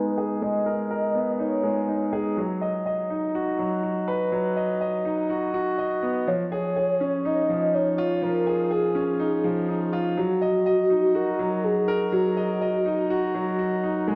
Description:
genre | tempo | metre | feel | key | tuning
electronica | 123 BPM | 4/4 | straight | unclear | A4 = 440 Hz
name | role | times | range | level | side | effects
warm velvety synth lead | melody | 0.0-2.1, 6.3-14.2 s | F#4 to D#5 | -27 LUFS | equal | chorus, digital delay
bright concert grand piano | riff | 0.0-14.2 s | E#3 to D#5 | -27 LUFS | equal | low-pass filter, digital delay
room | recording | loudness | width
wet lush hall reverb, RT60 2.3 s | dark, warm production | -25 LUFS | mono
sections
0.0-14.1 A section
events
filter sweep on grand piano 0.0-14.1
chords
0.0 G#madd9; 2.4 B; 6.3 C#add9; 10.2 D#m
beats
| 0.42 0.91 1.40 1.88 | 2.37 2.86 3.35 3.83 | 4.32 4.81 5.30 5.79 | 6.27 6.76 7.25 7.74 | 8.22 8.71 9.20 9.69 | 10.18 10.66 11.15 11.64 | 12.13 12.61 13.10 13.59 | 14.08

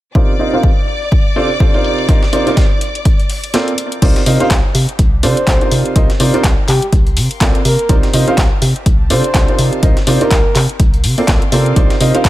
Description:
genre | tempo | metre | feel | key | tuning
piano house | 124 BPM | 4/4 | swing 58% on 16ths | C dorian | A4 = 440 Hz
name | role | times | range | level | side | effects
rich symphonic violin section | sustained chords | 0.1-4.0 s | D5 to D6 | -22 LUFS | left 2 dB | sidechain pumping
punchy analog drum machine | drums | 0.1-12.3 s | crash cymbal, handclaps, hi-hat | -20 LUFS | left 1 dB | low-pass filter on hats, low-pass filter on cymbals, low-pass filter on snare, low-pass filter on room
clear upright piano | riff | 0.2-12.3 s | C3 to F5 | -16 LUFS | right 2 dB | sidechain pumping, low-pass filter, tape echo
electronic kick drum | drums | 0.2-12.3 s | none | -13 LUFS | equal | none
breakbeat sampler-style drum kit | drums | 2.1-12.3 s | hi-hat, snare drum | -26 LUFS | equal | sidechain pumping on hats, high-pass filter on hats, high-pass filter on snare, high-pass filter on room
organ-like FM bass | bass | 4.0-12.3 s | C2 to C3 | -15 LUFS | equal | sidechain pumping
rich studio string section | texture | 4.0-12.3 s | C4 to D6 | -34 LUFS | left 3 dB | none
breathy flute-like synth lead | melody | 5.2-10.6 s | G4 to C5 | -20 LUFS | equal | chorus, tape echo
room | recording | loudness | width
digital ambience | none | -10 LUFS | side -15 dB against mid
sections
0.2-4.0 A section; 4.0-12.3 B section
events
filter sweep on upright piano 0.2-4.0; kick drops out 3.5-4.0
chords
0.2 Cm11; 1.1 Dm7; 1.8 Cm11; 2.8 Bbmaj9; 4.0 Cm11; 6.7 Bbmaj9/C; 7.9 Cm11; 10.6 Bbmaj9/C; 11.8 Cm11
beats
| 0.15 0.64 1.12 1.60 | 2.09 2.57 3.05 3.54 | 4.02 4.51 4.99 5.47 | 5.96 6.44 6.92 7.41 | 7.89 8.38 8.86 9.34 | 9.83 10.31 10.80 11.28 | 11.76 12.25

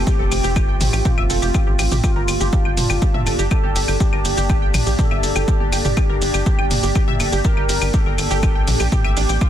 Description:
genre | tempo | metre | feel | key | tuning
melodic techno | 122 BPM | 4/4 | straight | G minor | A4 = 441 Hz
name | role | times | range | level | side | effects
expressive synth lead | melody | 0.0-9.5 s | F4 to Bb4 | -25 LUFS | right 1 dB | analog chorus, vintage 12-bit sampler grit, sidechain pumping, digital delay
evolving wavetable pad | sustained chords | 0.0-9.5 s | A3 to G4 | -29 LUFS | right 1 dB | chorus, built-in reverb, sidechain pumping
tight sequenced synth | arpeggios | 0.0-9.5 s | D4 to G5 | -27 LUFS | right 2 dB | chorus, sidechain pumping, ping-pong delay
tight sequencer bass | bass | 0.0-9.4 s | F1 to Bb1 | -22 LUFS | equal | sidechain pumping
airy breathy pad | texture | 0.0-9.5 s | F4 to A5 | -30 LUFS | left 1 dB | chorus, sidechain pumping
electronic kick drum | drums | 0.1-9.5 s | none | -19 LUFS | equal | none
punchy analog drum machine | drums | 0.1-9.5 s | claves, hi-hat, shaker, toms | -23 LUFS | equal | none
room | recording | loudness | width
little or no reverb | dense, heavily limited modern master | -15 LUFS | side -10 dB against mid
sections
0.0-9.5 A section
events
none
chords
0.0 F; 2.0 Gm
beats
| 0.07 0.56 1.05 1.54 | 2.04 2.53 3.02 3.51 | 4.00 4.50 4.99 5.48 | 5.97 6.46 6.95 7.45 | 7.94 8.43 8.92 9.41

